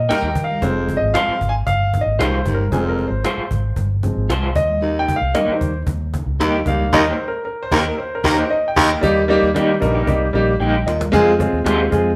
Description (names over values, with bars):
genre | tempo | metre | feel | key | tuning
uptempo 1960s-style soul | 114 BPM | 4/4 | straight | unclear | A4 = 440 Hz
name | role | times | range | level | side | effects
warm concert grand piano | accompaniment | 0.0-12.1 s | Eb3 to Ab5 | -21 LUFS | equal | none
vintage muted fingered electric bass | bass | 0.0-12.1 s | F1 to Eb3 | -24 LUFS | equal | none
clear horn section | second line | 0.1-0.6, 6.9-8.9 s | Eb4 to Bb4 | -28 LUFS | equal | none
electric guitar through a small old amp | stabs | 0.1-11.8 s | Bb3 to C5 | -25 LUFS | equal | tremolo
cajon | drums | 0.1-12.0 s | none | -28 LUFS | equal | none
congas | percussion | 0.1-12.0 s | none | -34 LUFS | equal | none
warm baritone saxophone | riff | 0.6-11.3 s | Eb2 to Bb2 | -24 LUFS | equal | none
room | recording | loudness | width
moderate large studio reverb, RT60 0.9 s | band playing live in one room | -18 LUFS | mono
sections
0.0-9.0 A section; 9.0-11.1 B section; 11.1-12.2 C section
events
band accent 0.0-0.6, 6.9-9.0; grand piano solo 0.0-9.0; drum fill 10.1-11.1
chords
0.0 Eb; 0.6 Fm; 4.6 Eb; 11.1 Fm